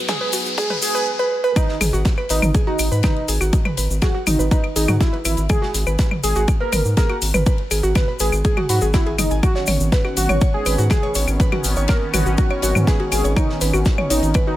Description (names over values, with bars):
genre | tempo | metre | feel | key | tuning
melodic techno | 122 BPM | 4/4 | straight | G# minor | A4 = 443 Hz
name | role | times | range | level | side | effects
sweeping resonant pad | sustained chords | 0.0-1.0, 9.4-14.6 s | G#2 to C#4 | -28 LUFS | right 1 dB | chorus, sidechain pumping
riser | sound effects | 0.0-1.1 s | none | -24 LUFS | left 2 dB | none
wide unison lead | melody | 0.1-14.6 s | D#4 to B4 | -24 LUFS | equal | sidechain pumping, dub echo
big rock drum kit | drums | 0.1-14.5 s | ride cymbal, snare drum | -34 LUFS | left 2 dB | sidechain pumping on cymbals, high-pass filter on cymbals, high-pass filter on snare, high-pass filter on room
electronic kick drum | drums | 0.1-14.4 s | none | -18 LUFS | equal | high-pass filter on kick, high-pass filter on room
house drum kit | drums | 0.1-14.4 s | claves, hi-hat, toms | -24 LUFS | left 1 dB | overdrive, sidechain pumping on toms, sidechain pumping on hats, sidechain pumping on perc
tube shaker | percussion | 0.1-14.4 s | none | -29 LUFS | left 2 dB | none
woody wave-folded pluck | arpeggios | 0.2-14.5 s | F#4 to B5 | -25 LUFS | right 1 dB | chorus, sidechain pumping, dub echo
round analog bass | bass | 1.8-14.3 s | F#1 to G#2 | -20 LUFS | equal | sidechain pumping
room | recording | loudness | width
little or no reverb | high-pass filter | -16 LUFS | side -14 dB against mid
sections
0.0-1.6 A section; 1.6-14.6 B section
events
build-up 0.0-1.6; riser 0.0-1.1; filter sweep on analog synth pad 0.0-1.6; filter sweep 0.0-1.6; drop 1.6-14.6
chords
0.0 G#m7; 9.4 Badd9/G#